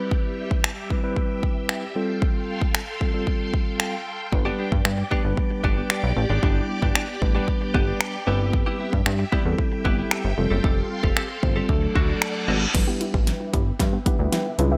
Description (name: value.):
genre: dance-pop.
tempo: 114 BPM.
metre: 4/4.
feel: straight.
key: G major.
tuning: A4 = 441 Hz.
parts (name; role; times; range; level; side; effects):
mellow tine electric piano; accompaniment; 0.0-14.8 s; F#3 to D5; -31 LUFS; equal; sidechain pumping, low-pass filter.
phased string machine; sustained chords; 0.0-14.8 s; G3 to D6; -36 LUFS; equal; ensemble chorus, phaser, sidechain pumping, low-pass filter.
downlifter, reverse cymbal and riser; sound effects; 0.0-0.1, 11.9-14.8 s; none; -34 LUFS; equal; none.
pop drum kit; drums; 0.1-14.7 s; crash cymbal, finger snaps, hi-hat, kick drum, snare drum; -26 LUFS; equal; none.
direct-recorded clean electric guitar; riff; 4.3-14.8 s; B3 to A4; -33 LUFS; equal; lush chorus, low-pass filter.
chorused synth bass; bass; 4.3-14.8 s; F1 to G2; -26 LUFS; equal; sidechain pumping.
unison pluck; arpeggios; 12.7-14.8 s; G3 to E5; -36 LUFS; equal; none.
room: light reverb.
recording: bright 1980s-style digital production.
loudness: -23 LUFS.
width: mono.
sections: 0.0-12.7 A section; 12.7-14.8 B section.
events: reverse cymbal 11.9-12.7; build-up 12.7-14.8; drum fill 12.7-14.8; riser 12.7-14.8; filter sweep 12.7-14.8.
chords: 0.0 Cmaj7/G; 2.0 Fadd9; 4.3 G; 8.3 Cmaj7/G; 10.4 Fadd9; 11.7 D; 12.7 G6.